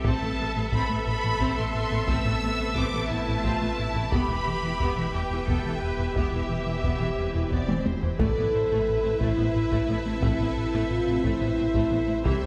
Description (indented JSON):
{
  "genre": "cinematic, hybrid orchestral and electronic film score",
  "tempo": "59 BPM (dotted quarters)",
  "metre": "6/8",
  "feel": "straight",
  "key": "A minor",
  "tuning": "A4 = 440 Hz",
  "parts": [
    { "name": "rich symphonic violin section", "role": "melody", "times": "0.0-12.5 s", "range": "A4 to E6", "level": "-36 LUFS", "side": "equal", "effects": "none" },
    { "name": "warm symphonic violin section", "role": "second line", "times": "0.0-12.5 s", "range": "B4 to E5", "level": "-40 LUFS", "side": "equal", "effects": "none" },
    { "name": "organ-like drone", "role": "sustained chords", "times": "0.0-12.5 s", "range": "B2 to E5", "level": "-39 LUFS", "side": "equal", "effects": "none" },
    { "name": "round analog bass", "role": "riff", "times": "0.0-12.5 s", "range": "C2 to A3", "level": "-33 LUFS", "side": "equal", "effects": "none" },
    { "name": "dark symphonic double bass section", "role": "bass", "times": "0.0-12.3 s", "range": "E1 to C2", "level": "-36 LUFS", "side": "equal", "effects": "none" },
    { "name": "pure sine sub bass", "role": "bass", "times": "0.0-12.5 s", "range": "E1 to C2", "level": "-38 LUFS", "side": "equal", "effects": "none" },
    { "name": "warm studio cello section", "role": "bass", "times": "0.0-12.5 s", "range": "A2 to B4", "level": "-37 LUFS", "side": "equal", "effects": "none" },
    { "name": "solo taiko drums", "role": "drums", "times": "0.0-12.5 s", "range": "none", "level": "-33 LUFS", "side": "equal", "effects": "none" },
    { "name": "rich studio viola section", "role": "accompaniment", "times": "0.1-12.5 s", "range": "E3 to E5", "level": "-36 LUFS", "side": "equal", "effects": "none" },
    { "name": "mellow French horn section", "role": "sustained chords", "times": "0.1-12.5 s", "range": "B3 to A4", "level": "-32 LUFS", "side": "equal", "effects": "none" },
    { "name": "swell and impact", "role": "sound effects", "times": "7.1-10.2 s", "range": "none", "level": "-40 LUFS", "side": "equal", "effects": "none" }
  ],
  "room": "moderate scoring stage reverb, RT60 1.9 s",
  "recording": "none",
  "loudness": "-26 LUFS",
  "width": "mono",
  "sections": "0.0-8.2 A section; 8.2-12.5 B section",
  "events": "swell 7.1-8.2; drum fill 7.7-8.2; impact 8.2-10.2",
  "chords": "0.1 Amadd9; 4.1 Em; 8.2 Amadd9",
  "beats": "| 0.06 1.07 | 2.09 3.11 | 4.12 5.14 | 6.16 7.17 | 8.19 9.21 | 10.22 11.24 | 12.26"
}